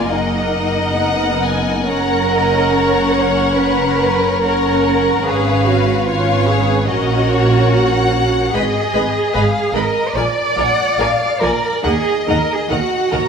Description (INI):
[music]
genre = classical, slow romantic movement for string orchestra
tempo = 72 BPM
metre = 4/4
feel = uneven beats, rubato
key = Eb minor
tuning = A4 = 440 Hz
[part]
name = rich symphonic violin section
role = melody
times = 0.0-13.3 s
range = Bb4 to Bb5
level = -23 LUFS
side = left 6 dB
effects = none
[part]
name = warm symphonic violin section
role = second line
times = 0.0-13.2 s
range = Db5 to Cb6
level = -22 LUFS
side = left 4 dB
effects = none
[part]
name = dark chamber viola section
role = accompaniment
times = 0.0-13.2 s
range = Eb3 to Cb5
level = -21 LUFS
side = equal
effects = none
[part]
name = warm chamber cello section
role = bass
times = 0.0-13.3 s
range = Eb4 to D5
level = -18 LUFS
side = right 3 dB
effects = none
[part]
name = warm chamber double bass section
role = bass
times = 0.0-13.2 s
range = Gb1 to Eb2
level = -20 LUFS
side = right 2 dB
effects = none
[sound]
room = moderate scoring stage reverb, RT60 2.0 s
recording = none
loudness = -13 LUFS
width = side -6 dB against mid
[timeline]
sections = 0.0-13.3 A section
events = none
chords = 0.1 Ebm/Gb; 1.9 Gb; 5.2 Db7/Ab; 6.9 Gb/Bb; 8.5 Abm; 10.2 Bb; 11.9 Ebm